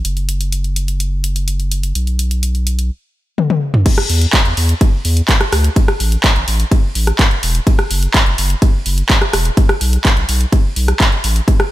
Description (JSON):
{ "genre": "EDM, festival progressive house", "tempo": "126 BPM", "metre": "4/4", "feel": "straight", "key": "unclear", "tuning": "A4 = 440 Hz", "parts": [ { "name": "saturated sub bass", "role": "bass", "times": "0.0-11.4 s", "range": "E1 to E2", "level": "-15 LUFS", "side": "equal", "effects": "sidechain pumping" }, { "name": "big-room dance drum kit", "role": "drums", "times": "0.0-11.7 s", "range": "crash cymbal, handclaps, hi-hat, ride cymbal, rim click, toms", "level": "-17 LUFS", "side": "equal", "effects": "none" }, { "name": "electronic kick drum", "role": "drums", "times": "3.9-11.6 s", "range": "none", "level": "-12 LUFS", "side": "equal", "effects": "none" } ], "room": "little or no reverb", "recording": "none", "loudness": "-12 LUFS", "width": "side -15 dB against mid", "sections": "0.0-3.9 A section; 3.9-11.7 B section", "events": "drum fill 3.4-3.9; drop 3.9-11.7", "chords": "none", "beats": "| 0.05 0.53 1.00 1.48 | 1.95 2.43 2.91 3.38 | 3.86 4.33 4.81 5.29 | 5.76 6.24 6.71 7.19 | 7.67 8.14 8.62 9.10 | 9.57 10.05 10.53 11.00 | 11.48" }